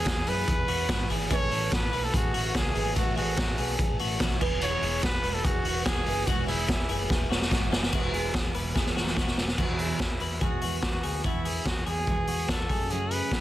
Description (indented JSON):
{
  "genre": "jangly indie pop",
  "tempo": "145 BPM",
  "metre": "4/4",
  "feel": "straight",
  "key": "E major",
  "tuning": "A4 = 438 Hz",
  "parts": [
    { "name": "breathy trumpet", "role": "melody", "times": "0.0-7.1, 9.6-13.4 s", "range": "E4 to C#5", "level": "-32 LUFS", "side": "equal", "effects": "slapback echo" },
    { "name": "picked twelve-string acoustic guitar", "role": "accompaniment", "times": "0.0-13.4 s", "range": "E2 to G#4", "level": "-35 LUFS", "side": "right 5 dB", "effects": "none" },
    { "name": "warm upright piano", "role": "accompaniment", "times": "0.0-7.9 s", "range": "A3 to B4", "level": "-41 LUFS", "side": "right 12 dB", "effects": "none" },
    { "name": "electric guitar through a small old amp", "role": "arpeggios", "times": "0.0-13.4 s", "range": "F#4 to B4", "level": "-35 LUFS", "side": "left 5 dB", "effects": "none" },
    { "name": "deep dub picked electric bass", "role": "bass", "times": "0.0-13.4 s", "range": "E1 to G#2", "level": "-34 LUFS", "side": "equal", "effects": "none" },
    { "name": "raw garage drum kit", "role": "drums", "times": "0.1-13.4 s", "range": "crash cymbal, hi-hat, kick drum, ride cymbal, snare drum", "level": "-27 LUFS", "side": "equal", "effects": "none" },
    { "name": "group handclap", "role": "percussion", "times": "0.1-7.6 s", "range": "none", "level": "-45 LUFS", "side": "right 7 dB", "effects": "none" }
  ],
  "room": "studio ambience",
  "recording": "dense, heavily limited modern master",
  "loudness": "-25 LUFS",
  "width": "side -14 dB against mid",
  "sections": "0.0-7.9 A section; 7.9-9.6 B section; 9.6-13.4 C section",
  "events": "drum fill 7.1-7.9, 8.8-9.6",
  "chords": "0.0 E; 1.3 Asus2; 4.4 E; 9.6 Eadd9; 12.7 F#madd9"
}